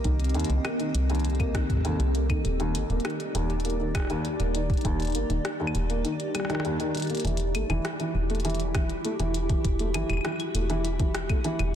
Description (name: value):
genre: IDM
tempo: 100 BPM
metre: 4/4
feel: straight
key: unclear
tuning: A4 = 439 Hz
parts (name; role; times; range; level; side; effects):
- granular cloud pad; sustained chords; 0.0-11.8 s; C4 to Eb5; -32 LUFS; equal; built-in reverb
- felt-muted upright piano; arpeggios; 0.0-11.6 s; Eb2 to Bb3; -30 LUFS; equal; ping-pong delay
- woody FM bass; bass; 0.0-11.8 s; D#1 to Eb2; -28 LUFS; equal; none
- electronic kick drum; drums; 0.0-5.0, 8.7-11.4 s; none; -27 LUFS; equal; small room ambience
- glitchy drum kit; drums; 0.0-11.7 s; claves, hi-hat, rim click; -35 LUFS; left 2 dB; small room ambience, digital delay
room: light reverb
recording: dense, heavily limited modern master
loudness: -25 LUFS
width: side -10 dB against mid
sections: 0.0-7.2 A section; 7.2-11.8 B section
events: drum fill 6.9-7.2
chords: 0.0 Cm7; 2.4 D#maj7; 7.2 Emadd9